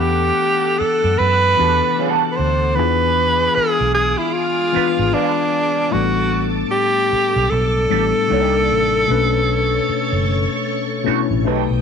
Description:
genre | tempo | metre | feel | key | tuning
R&B, neo-soul | 76 BPM | 4/4 | swing 59% on 16ths | E dorian | A4 = 441 Hz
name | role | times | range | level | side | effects
warm tenor saxophone | melody | 0.0-11.4 s | D4 to C5 | -17 LUFS | right 1 dB | slapback echo
mellow tine electric piano | accompaniment | 0.0-11.8 s | A2 to F#5 | -22 LUFS | left 13 dB | medium stereo tremolo
string machine, full ensemble | sustained chords | 0.0-11.8 s | Bb3 to D#6 | -26 LUFS | right 2 dB | ensemble chorus
vintage muted fingered electric bass | bass | 0.0-11.8 s | F#1 to F#2 | -21 LUFS | right 2 dB | none
electric guitar at the edge of break-up | second line | 1.6-11.6 s | G3 to D5 | -23 LUFS | right 15 dB | wah
room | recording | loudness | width
moderate spring reverb, RT60 1.2 s | 1960s-style stereo with parts hard left and right | -15 LUFS | side -6 dB against mid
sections
0.0-11.8 A section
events
none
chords
0.0 Em11; 2.8 E7b9; 5.9 A7sus4; 8.3 Cm9; 9.1 Bm9

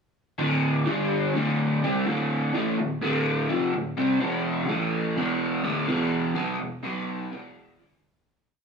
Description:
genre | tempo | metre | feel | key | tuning
rock | 126 BPM | 4/4 | straight | unclear | A4 = 444 Hz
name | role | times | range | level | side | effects
crunchy overdriven guitar | solo | 0.4-8.0 s | D2 to C4 | -23 LUFS | equal | flanger
room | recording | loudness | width
moderate echo chamber reverb, RT60 1.7 s, digital ambience | small room ambience | -23 LUFS | side -5 dB against mid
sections
0.4-8.0 groove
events
fade-out 6.1-8.0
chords
0.4 D5; 0.9 G5; 1.3 Dm; 4.2 E5; 4.7 A5; 5.2 E5/D; 6.8 B5; 7.3 Em7

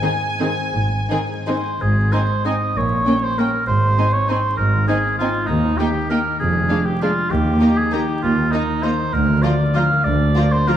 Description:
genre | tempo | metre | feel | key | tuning
classical | 157-213 BPM | 3/4 | rubato | Ab major | A4 = 440 Hz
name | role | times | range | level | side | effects
rich studio violin section | melody | 0.0-10.8 s | F5 to Bb5 | -29 LUFS | left 2 dB | none
rich studio violin section | second line | 0.0-10.8 s | Db4 to Ab4 | -28 LUFS | left 3 dB | none
rich studio viola section | accompaniment | 0.0-10.8 s | Eb3 to C4 | -25 LUFS | right 1 dB | none
concert harp | arpeggios | 0.0-10.8 s | Ab2 to C5 | -24 LUFS | left 3 dB | none
warm studio cello section | bass | 0.7-10.3 s | D2 to Bb2 | -22 LUFS | right 2 dB | none
warm symphonic double bass section | bass | 0.7-10.3 s | F1 to Eb2 | -24 LUFS | right 2 dB | none
warm oboe | second line | 1.5-10.8 s | Eb4 to F5 | -21 LUFS | right 2 dB | none
room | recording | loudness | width
wet scoring stage reverb, RT60 1.8 s | vinyl crackle | -16 LUFS | side -10 dB against mid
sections
0.0-1.8 A section; 1.8-10.8 B section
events
none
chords
0.0 Ab; 2.8 Gdim/Bb; 3.7 Ab; 5.5 Eb; 6.4 Ddim/F; 7.3 Eb; 9.1 Bb/D

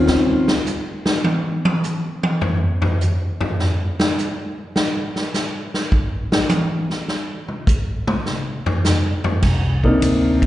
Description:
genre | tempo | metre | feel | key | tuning
jazz piano trio | 103 BPM | 4/4 | swing 69% on 8ths | unclear | A4 = 440 Hz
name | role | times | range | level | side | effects
dark upright piano | melody | 0.0-0.5, 9.8-10.5 s | C3 to F4 | -16 LUFS | left 1 dB | slapback echo
upright bass | bass | 0.0-0.5, 9.4-10.5 s | C2 to D2 | -20 LUFS | equal | none
swinging big-band drum kit | drums | 0.1-10.5 s | crash cymbal, hi-hat, kick drum, ride cymbal, snare drum, toms | -19 LUFS | equal | none
room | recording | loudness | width
light reverb | live gig heard through the venue's PA, recital hall reverb, nothing above 10.4 kHz | -18 LUFS | side -14 dB against mid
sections
0.0-9.4 A section; 9.4-10.5 B section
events
upright piano solo 0.0-9.4; drum solo 0.1-9.4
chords
0.1 N.C.; 9.4 Cm9

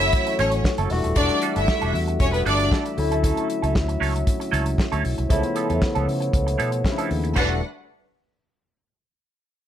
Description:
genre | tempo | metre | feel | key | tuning
disco | 116 BPM | 4/4 | straight | E dorian | A4 = 436 Hz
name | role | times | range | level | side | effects
warm studio violin section | second line | 0.0-2.7, 7.4-7.6 s | B3 to F#5 | -23 LUFS | left 1 dB | none
barky tine electric piano | accompaniment | 0.0-7.6 s | C#3 to F#4 | -28 LUFS | left 4 dB | wide subtle chorus
clean electric guitar | accompaniment | 0.0-7.5 s | E#3 to A4 | -29 LUFS | right 8 dB | wah
dark French horn section | sustained chords | 0.0-7.6 s | E#3 to E5 | -29 LUFS | equal | none
fingered electric bass | bass | 0.0-7.6 s | D#1 to C#3 | -24 LUFS | equal | none
warm soul drum kit | drums | 0.0-7.5 s | crash cymbal, hi-hat, kick drum, snare drum | -24 LUFS | equal | none
room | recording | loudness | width
light reverb, studio ambience | none | -20 LUFS | side -10 dB against mid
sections
0.0-7.4 A section; 7.4-9.4 B section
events
none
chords
0.0 F#m7; 0.9 Em11; 3.0 Dmaj9; 5.3 C#7alt; 7.4 Em11

